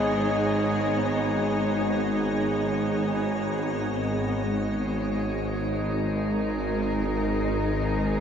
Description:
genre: dark ambient drone.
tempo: 56 BPM.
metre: 4/4.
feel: straight.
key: G# minor.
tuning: A4 = 440 Hz.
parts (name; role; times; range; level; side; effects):
dark studio cello section; sustained chords; 0.0-8.2 s; G#3 to C#5; -28 LUFS; equal; none.
tubular bells; arpeggios; 0.0-8.2 s; G#4; -40 LUFS; left 1 dB; none.
bowed-like drone; drone; 0.0-8.2 s; G#1 to G#2; -27 LUFS; right 1 dB; built-in reverb.
icy glass pad; texture; 0.0-8.2 s; G#3 to D#5; -31 LUFS; left 1 dB; chorus, built-in reverb.
room: wet huge ambient reverb, RT60 7.8 s.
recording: none.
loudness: -24 LUFS.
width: side -8 dB against mid.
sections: 0.0-4.3 A section; 4.3-8.2 B section.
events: none.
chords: 0.0 G#m; 4.3 G#5.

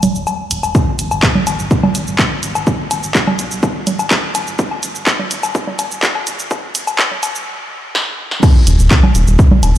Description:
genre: melodic techno.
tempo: 125 BPM.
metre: 4/4.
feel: straight.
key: unclear.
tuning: A4 = 438 Hz.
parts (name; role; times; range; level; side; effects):
round analog bass; bass; 0.0-9.8 s; Eb1 to Cb2; -16 LUFS; equal; sidechain pumping.
punchy analog drum machine; drums; 0.0-9.8 s; congas, crash cymbal, handclaps, hi-hat, shaker, snare drum, woodblock; -16 LUFS; equal; none.
electronic kick drum; drums; 0.7-9.5 s; none; -12 LUFS; equal; overdrive.
room: light reverb.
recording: played on a big sound system in a bare room, large studio reverb, high-pass filter.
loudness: -13 LUFS.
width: side -12 dB against mid.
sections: 0.0-8.4 A section; 8.4-9.8 B section.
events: build-up 0.0-8.4; filter sweep 0.0-8.4; stop 7.5-8.4; drum fill 7.9-8.4; drop 8.4-9.8.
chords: none.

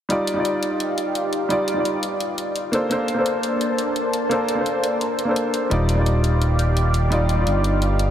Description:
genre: liquid drum and bass.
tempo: 171 BPM.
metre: 4/4.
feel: straight.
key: Eb lydian.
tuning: A4 = 439 Hz.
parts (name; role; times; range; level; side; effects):
dark grand piano; accompaniment; 0.1-8.1 s; G3 to D5; -22 LUFS; equal; vintage 12-bit sampler grit, low-pass filter, tape echo.
lush unison pad; sustained chords; 0.7-8.1 s; Bb3 to A5; -25 LUFS; equal; chorus, phaser, vintage 12-bit sampler grit.
electronic hi-hat; drums; 0.1-8.1 s; none; -30 LUFS; left 2 dB; small room ambience.
smooth synth bass; bass; 5.7-8.1 s; Eb1 to G1; -19 LUFS; equal; none.
room: wet huge ambient reverb, RT60 4.1 s.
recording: dreamy mix soaked in reverb.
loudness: -19 LUFS.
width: side -10 dB against mid.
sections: 0.1-8.1 A section.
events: filter sweep on analog synth pad 0.1-8.1.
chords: 0.1 Ebmaj9; 2.7 Bbmaj9; 5.7 Ebmaj9.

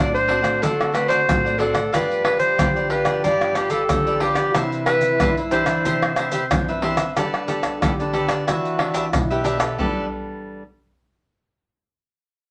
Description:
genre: samba and choro.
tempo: 92 BPM.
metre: 4/4.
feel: straight.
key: C major, G major from 7.2 s.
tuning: A4 = 438 Hz.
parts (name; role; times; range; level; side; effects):
clear clarinet; melody; 0.0-6.8 s; G4 to D5; -23 LUFS; equal; none.
mellow trombone; second line; 0.0-10.1 s; C4 to G4; -32 LUFS; equal; none.
cavaquinho; accompaniment; 0.0-10.1 s; D4 to F#5; -28 LUFS; equal; none.
nylon-string guitar; accompaniment; 0.0-10.6 s; G2 to A4; -30 LUFS; equal; none.
maracas, pandeiro, tamborim and surdo; percussion; 0.2-9.9 s; none; -26 LUFS; equal; none.
room: moderate studio ambience, RT60 0.5 s.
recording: none.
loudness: -20 LUFS.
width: mono.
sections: 0.0-7.2 A section; 7.2-9.8 B section; 9.8-12.4 C section.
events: none.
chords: 0.0 D7; 1.9 G7; 4.5 Cmaj9; 7.2 Gadd9; 8.5 Em7; 9.8 Gadd9.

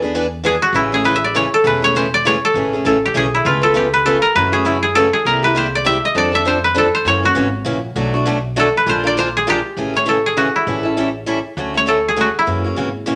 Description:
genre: acoustic string swing (jazz manouche).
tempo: 200 BPM.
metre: 3/4.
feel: swing 59% on 8ths.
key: A major.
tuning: A4 = 440 Hz.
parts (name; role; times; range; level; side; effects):
koto; melody; 0.0-13.2 s; C#4 to E5; -17 LUFS; equal; none.
picked steel-string acoustic guitar; accompaniment; 0.0-13.2 s; B2 to B4; -22 LUFS; equal; none.
upright bass; bass; 0.0-13.2 s; E1 to F#2; -28 LUFS; equal; none.
room: moderate studio reverb, RT60 0.7 s.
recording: none.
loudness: -16 LUFS.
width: mono.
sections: 0.0-2.5 A section; 2.5-9.8 A section; 9.8-13.2 B section.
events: koto solo 0.0-9.8.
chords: 0.0 E7; 0.7 Amaj7; 3.5 C#aug7; 4.4 F#m7; 5.3 C7; 6.2 F6; 7.1 F#7; 8.0 Bm7; 8.9 Bb7; 9.8 Amaj7; 10.7 A7; 11.6 Dmaj7; 12.5 F#7.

